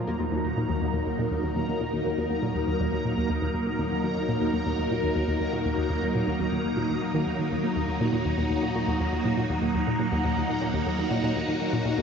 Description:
ambient, sequencer-driven space music; 121 BPM; 4/4; straight; Eb minor; A4 = 440 Hz
phased string machine; sustained chords; 0.0-12.0 s; Gb3 to Bb4; -27 LUFS; equal; ensemble chorus, phaser
analog pluck; riff; 0.0-12.0 s; Eb2 to Bb3; -28 LUFS; left 1 dB; chorus, tape echo
bubbling stepped-filter texture; texture; 0.0-12.0 s; Bb5; -36 LUFS; right 2 dB; chorus, built-in reverb
wet cathedral reverb, RT60 6.5 s; in a vast, echoing space, nothing above 7.7 kHz; -24 LUFS; side -6 dB against mid
0.0-12.0 A section
filter sweep on synth arpeggio sound 0.0-12.0
0.0 Ebm

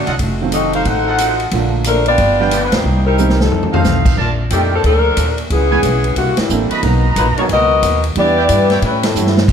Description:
jazz, big band swing; 181 BPM; 4/4; swing 64% on 8ths; A4 = 440 Hz
dark saxophone section; melody; 0.0-9.4 s; D3 to Gb5; -16 LUFS; left 2 dB
clear baby grand piano; accompaniment; 0.0-9.5 s; D3 to A#4; -22 LUFS; right 7 dB
picked old ladder-braced acoustic guitar; accompaniment; 0.0-9.5 s; F2 to A4; -24 LUFS; left 1 dB
upright bass; bass; 0.0-9.5 s; F1 to A2; -17 LUFS; equal
warm trumpet section; stabs; 0.1-8.8 s; Eb4 to Cb6; -22 LUFS; right 3 dB
swinging big-band drum kit; drums; 0.1-9.5 s; crash cymbal, hi-hat, kick drum, ride cymbal, snare drum, toms; -20 LUFS; left 1 dB
light reverb; -12 LUFS; side -7 dB against mid
0.0-4.2 A section; 4.2-9.5 A section
band accent 2.7, 6.3, 9.0; drum fill 3.2-3.8, 9.2-9.5
0.2 F7b9; 1.5 Bbmaj7; 2.2 G7; 2.9 Cm7; 3.5 F7; 4.2 Bbmaj7; 5.5 Dbm7; 6.2 C13; 6.8 Bmaj7; 8.2 Em7; 8.8 A7

